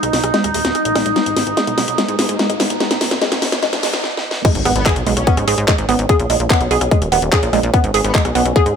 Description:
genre	psychedelic trance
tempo	146 BPM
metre	4/4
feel	straight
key	G# minor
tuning	A4 = 440 Hz
part	overtone-sweeping drone	sustained chords	0.0-8.8 s	C#4 to D#4	-23 LUFS	right 1 dB	chorus, built-in reverb, sidechain pumping
part	plucky analog bass	bass	0.0-8.7 s	D#1 to G#2	-21 LUFS	equal	none
part	garage drum kit	drums	0.0-8.7 s	crash cymbal, handclaps, hi-hat, rim click, snare drum	-20 LUFS	left 1 dB	none
part	riser and impact	sound effects	0.8-6.1 s	none	-28 LUFS	equal	none
part	woody wave-folded pluck	riff	0.3-8.6 s	G#3 to G#4	-19 LUFS	moving between left 6 dB and right 3 dB	chorus, auto-pan, sidechain pumping, dub echo
part	electronic kick drum	drums	4.4-8.6 s	none	-14 LUFS	equal	none
part	metallic wobble bass	second line	4.8-5.5, 8.0-8.2 s	B3 to C#4	-28 LUFS	left 2 dB	ensemble chorus, sidechain pumping, high-pass filter, tape echo
room	light reverb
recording	high-pass filter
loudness	-14 LUFS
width	side -7 dB against mid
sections	0.0-4.4 A section; 4.4-8.8 B section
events	build-up 0.0-4.4; drum fill 0.0-4.0, 4.0-4.4; riser 0.8-4.0; filter sweep on synth arpeggio sound 0.0-4.4; filter sweep 0.0-4.4; drop 4.4-8.8; impact 4.4-6.1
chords	0.0 G#5

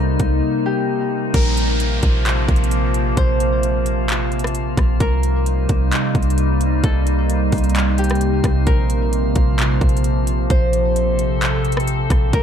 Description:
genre	hip hop, atmospheric cloud-rap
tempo	131 BPM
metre	4/4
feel	half-time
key	unclear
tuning	A4 = 440 Hz
part	concert harp	melody	0.0-12.4 s	G4 to C5	-26 LUFS	equal	low-pass filter, ping-pong delay
part	glassy FM pad	sustained chords	0.0-12.4 s	C3 to A4	-21 LUFS	equal	ensemble chorus, built-in reverb, sidechain pumping
part	clean 808-style bass	bass	0.0-12.4 s	Bb1 to C2	-19 LUFS	equal	none
part	drifting glass-harmonics texture	texture	0.0-12.4 s	Bb3 to C5	-30 LUFS	right 1 dB	chorus, built-in reverb
part	trap drum kit	drums	0.2-12.4 s	crash cymbal, handclaps, hi-hat, kick drum, rim click	-20 LUFS	equal	none
part	downlifter	sound effects	1.3-5.0 s	none	-28 LUFS	equal	none
room	little or no reverb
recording	dark, warm production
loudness	-15 LUFS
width	side -8 dB against mid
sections	0.0-1.3 A section; 1.3-12.4 B section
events	break 0.4-1.3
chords	0.0 Cm7; 1.3 Bbsus2; 5.0 Cm7; 8.7 Bbsus2

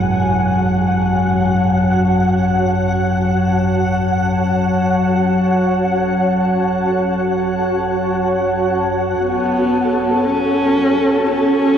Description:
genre	dark ambient drone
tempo	free time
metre	none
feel	none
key	F# minor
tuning	A4 = 440 Hz
part	granular cloud pad	sustained chords	0.0-11.8 s	F#4 to A5	-19 LUFS	equal	built-in reverb, shimmer reverb
part	carillon bells	arpeggios	0.0-2.7 s	G#2 to E4	-33 LUFS	equal	none
part	deep rumbling drone	drone	0.0-11.8 s	F#2 to F#3	-18 LUFS	left 1 dB	built-in reverb
part	flickering grainy texture	texture	0.0-11.8 s	A4 to F#5	-22 LUFS	equal	built-in reverb, shimmer reverb
part	warm horsehead fiddle	melody	9.2-11.8 s	B3 to C#4	-16 LUFS	equal	none
room	wet huge ambient reverb, RT60 9.3 s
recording	nothing above 10.6 kHz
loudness	-14 LUFS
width	side -8 dB against mid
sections	0.0-9.2 A section; 9.2-11.8 B section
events	filter sweep on synth drone 9.2-11.8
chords	0.0 F#madd9

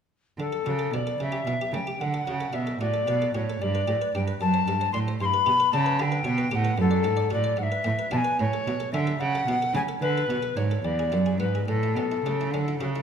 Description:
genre	classical, baroque-style sonata movement with continuo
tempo	74 BPM (dotted quarters)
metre	6/8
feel	rubato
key	D major, A major from 6.8 s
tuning	A4 = 440 Hz
part	mellow alto recorder	melody	0.4-13.0 s	A4 to C6	-26 LUFS	left 3 dB	none
part	buff-stop harpsichord	accompaniment	0.4-13.0 s	E2 to D5	-30 LUFS	right 2 dB	none
part	rich cello	bass	0.4-13.0 s	E2 to D3	-27 LUFS	right 3 dB	none
room	wet recital hall reverb, RT60 1.7 s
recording	minimal, uncompressed stereo recording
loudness	-23 LUFS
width	side -7 dB against mid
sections	0.4-13.0 A section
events	none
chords	0.4 D; 1.2 A7; 2.0 D; 3.6 G; 4.4 D7/F#; 5.2 G; 6.8 D/F#; 7.6 E7/G#; 8.4 A; 10.0 D; 10.8 E7; 11.7 A

